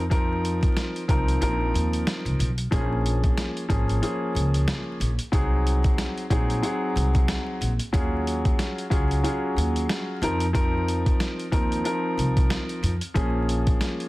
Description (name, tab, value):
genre	hip hop, boom-bap hip-hop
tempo	92 BPM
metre	4/4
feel	swing 57% on 16ths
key	Bb minor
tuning	A4 = 440 Hz
part	upright bass	bass	0.0-13.7 s	Ab1 to F2	-25 LUFS	equal	none
part	warm upright piano	accompaniment	0.1-14.1 s	F3 to Bb4	-27 LUFS	left 1 dB	high-pass filter, low-pass filter
part	boom bap sampler-style drum kit	drums	0.1-14.1 s	hi-hat, kick drum, snare drum	-25 LUFS	equal	none
room	little or no reverb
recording	dense, heavily limited modern master, vinyl crackle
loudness	-22 LUFS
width	side -19 dB against mid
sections	0.0-13.2 A section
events	kick muted 1.4-2.7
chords	0.0 F7sus4; 2.7 Bbm7; 5.3 Ab7; 7.9 Ebm11; 10.2 F7sus4; 13.2 Bbm7